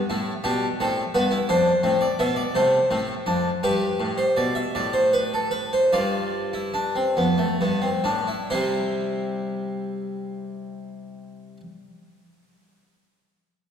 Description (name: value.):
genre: classical, baroque-style 3-part fugue for harpsichord.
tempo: 43-58 BPM (dotted quarters).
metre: 12/8.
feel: straight.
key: C major.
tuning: A4 = 440 Hz.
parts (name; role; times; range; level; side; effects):
harpsichord; solo; 0.0-11.6 s; F2 to E5; -21 LUFS; equal; none.
room: wet concert hall reverb, RT60 2.2 s.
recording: heard from further back in the room.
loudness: -21 LUFS.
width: side -8 dB against mid.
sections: 0.0-8.5 A section; 8.5-13.7 B section.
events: slowing down 0.8-8.5.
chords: 0.0 Em; 1.5 F; 3.6 G7; 8.5 C.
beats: 0.45 1.49 2.54 | 3.62 4.74 5.91 7.16 | 8.49 9.86 11.25.